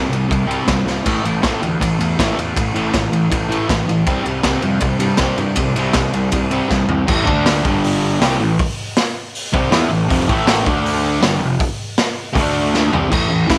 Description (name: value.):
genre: garage rock duo or trio.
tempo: 159 BPM.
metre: 4/4.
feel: straight.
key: A minor.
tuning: A4 = 440 Hz.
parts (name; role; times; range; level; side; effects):
fuzz guitar; riff; 0.0-13.6 s; F2 to E4; -20 LUFS; equal; distortion.
fuzz picked electric bass; bass; 0.0-13.6 s; F1 to G2; -25 LUFS; equal; overdrive.
raw garage drum kit; drums; 0.1-13.6 s; crash cymbal, hi-hat, kick drum, ride cymbal, snare drum, splash cymbal, toms; -21 LUFS; equal; none.
clean lap steel guitar; melody; 13.5-13.6 s; E4; -21 LUFS; equal; none.
room: light reverb.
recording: none.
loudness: -17 LUFS.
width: mono.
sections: 0.0-7.1 A section; 7.1-13.1 B section.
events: drum fill 0.9, 6.7-7.1, 12.7-13.1.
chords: 0.0 C5; 1.1 A5; 4.1 C5; 7.1 A5; 7.3 D5; 7.7 G5; 8.2 Am; 10.1 F5; 10.3 A5; 10.7 D5; 11.2 F5; 12.4 D5; 12.9 C5.